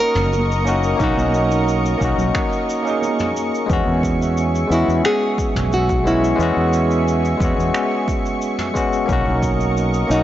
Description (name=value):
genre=sunset chillout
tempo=89 BPM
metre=4/4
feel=straight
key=unclear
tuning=A4 = 440 Hz
part: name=nylon-string guitar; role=melody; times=0.0-10.2 s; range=D#4 to A#4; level=-22 LUFS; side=right 1 dB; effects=analog delay
part: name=bell-like tine electric piano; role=accompaniment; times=0.0-10.2 s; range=G#3 to G#4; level=-20 LUFS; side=moving between left 4 dB and right 4 dB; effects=auto-pan, analog delay
part: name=lush unison pad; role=sustained chords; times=0.0-10.2 s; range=G#4 to C#6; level=-25 LUFS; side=equal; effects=chorus
part: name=mellow fretless electric bass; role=bass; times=0.2-10.2 s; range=F#1 to E2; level=-20 LUFS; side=equal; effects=transformer saturation
part: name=vintage brush drum kit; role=drums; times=0.2-10.2 s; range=cabasa, finger snaps, toms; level=-29 LUFS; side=equal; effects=none
part: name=congas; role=percussion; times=0.3-3.2 s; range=none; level=-30 LUFS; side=right 2 dB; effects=none
part: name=electronic kick drum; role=drums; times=1.0-9.6 s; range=none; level=-24 LUFS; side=equal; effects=overdrive
room=light reverb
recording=transformer saturation, nothing above 7.6 kHz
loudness=-16 LUFS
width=side -12 dB against mid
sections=0.0-3.7 A section; 3.7-10.2 A section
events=none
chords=0.0 Bmaj9; 3.7 E6; 9.1 Bmaj9